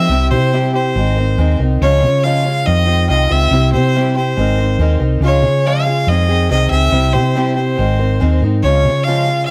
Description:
folk rock and heartland rock; 141 BPM; 4/4; straight; A4 = 438 Hz
bright fiddle; melody; 0.0-9.5 s; C5 to F5; -20 LUFS; equal; plate reverb, tape echo
picked acoustic archtop guitar; accompaniment; 0.0-9.5 s; F2 to Bb4; -21 LUFS; equal; plate reverb
hollow-body short-scale fingered electric bass; bass; 0.0-9.5 s; Ab1 to Db3; -17 LUFS; equal
light reverb; -14 LUFS; mono
0.0-9.5 A section
0.1 C; 1.0 Abadd9; 1.8 Db; 2.7 Fm7; 3.5 C; 4.4 Abadd9; 5.2 Db; 6.1 Fm7; 6.9 C; 7.8 Abadd9; 8.6 Db

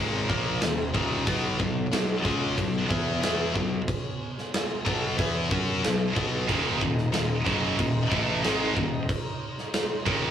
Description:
heavy metal; 92 BPM; 4/4; straight; Eb phrygian; A4 = 445 Hz
warm chamber string section; sustained chords; 0.0-10.3 s; B3 to Bb5; -39 LUFS; left 1 dB
heavy high-gain guitar; riff; 0.0-10.3 s; Eb2 to F#4; -31 LUFS; left 6 dB; distortion
heavy high-gain guitar; riff; 0.0-10.3 s; Eb2 to F#4; -30 LUFS; equal; distortion
fuzz picked electric bass; bass; 0.0-10.3 s; Eb1 to F#2; -32 LUFS; equal; overdrive
big rock drum kit; drums; 0.3-10.2 s; crash cymbal, kick drum, snare drum; -28 LUFS; right 1 dB
high-gain distorted guitar; riff; 6.5-10.3 s; Eb2 to A3; -29 LUFS; right 5 dB; distortion
light reverb; rough rehearsal-room recording; -24 LUFS; side -9 dB against mid
0.0-10.3 A section
0.0 Eb5; 1.3 B5; 6.5 Ebm

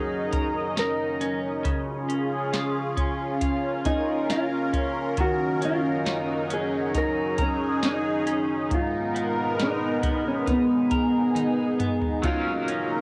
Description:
dream pop; 68 BPM; 4/4; straight; F# major; A4 = 438 Hz
mellow electric guitar; melody; 0.0-13.0 s; B3 to A#4; -29 LUFS; equal; cassette tape, analog delay
lush unison pad; sustained chords; 0.0-13.0 s; F#3 to D#5; -30 LUFS; equal; chorus, phaser, cassette tape
clean electric guitar; arpeggios; 0.0-13.0 s; G#2 to A#4; -35 LUFS; equal; subtle chorus, cassette tape, analog delay
soft vintage rhythm box; drums; 0.3-12.9 s; hi-hat, kick drum, snare drum, toms; -31 LUFS; equal; cassette tape
electric guitar at the edge of break-up; accompaniment; 12.2-13.0 s; F#3 to A#4; -32 LUFS; equal; tremolo, lush chorus, cassette tape
wet booth ambience, RT60 0.2 s; home recording on cassette; -25 LUFS; mono
0.0-12.2 A section
drum fill 11.4-12.2
0.0 F#6; 1.7 C#; 5.2 D#m7; 8.7 G#madd9; 12.2 F#6

